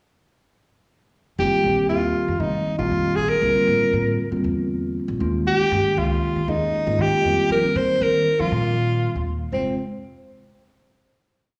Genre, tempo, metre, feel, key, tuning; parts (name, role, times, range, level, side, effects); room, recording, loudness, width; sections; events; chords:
electric jazz fusion; 118 BPM; 4/4; straight; F minor; A4 = 440 Hz
breathy alto saxophone; melody; 1.4-9.8 s; C4 to C5; -23 LUFS; equal; slapback echo, analog delay
mellow tine electric piano; accompaniment; 1.4-9.8 s; D3 to Ab4; -27 LUFS; equal; phaser, slapback echo
upright bass; bass; 1.4-9.8 s; F1 to F3; -29 LUFS; equal
light reverb; live gig heard through the venue's PA, recital hall reverb, small room ambience; -21 LUFS; mono
1.4-9.5 A section; 9.5-11.6 final chord
1.4 F9sus4; 3.4 C9sus4; 5.2 Eb9sus4; 7.2 F9sus4; 9.5 Fm